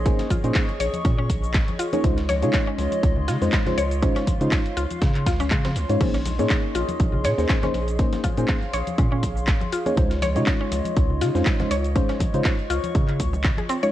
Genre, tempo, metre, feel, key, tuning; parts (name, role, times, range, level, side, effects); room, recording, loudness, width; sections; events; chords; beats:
deep house; 121 BPM; 4/4; swing 55% on 16ths; Db major; A4 = 441 Hz
hollow soft pad; sustained chords; 0.0-13.9 s; F4 to Db6; -32 LUFS; left 1 dB; chorus, sidechain pumping
round analog bass; bass; 0.0-13.5 s; Bb1 to Db3; -25 LUFS; equal; tube saturation, sidechain pumping
mellow FM electric piano; stabs; 0.1-13.9 s; Ab3 to Db5; -26 LUFS; equal; chorus, phaser, cassette tape, sidechain pumping, analog delay
dusty soul sampler-style drum kit; drums; 0.1-13.8 s; hi-hat, snare drum; -40 LUFS; equal
electronic kick drum; drums; 0.1-13.6 s; -22 LUFS; equal
house drum kit; drums; 0.1-13.9 s; crash cymbal, handclaps, hi-hat, shaker; -31 LUFS; equal
congas; percussion; 0.2-13.9 s; -34 LUFS; left 2 dB
mallet-like synth pluck; arpeggios; 0.3-13.9 s; Db3 to Db5; -30 LUFS; left 2 dB; chorus, phaser, cassette tape, sidechain pumping, analog delay
light reverb; cassette tape; -20 LUFS; side -13 dB against mid
0.0-13.9 A section
0.0 Bbm11; 2.0 Dbmaj9; 6.0 Bbm11; 10.0 Dbmaj9
| 0.06 0.55 1.05 1.54 | 2.04 2.54 3.03 3.53 | 4.02 4.52 5.01 5.51 | 6.01 6.50 7.00 7.50 | 7.99 8.49 8.98 9.48 | 9.97 10.47 10.97 11.46 | 11.96 12.45 12.95 13.45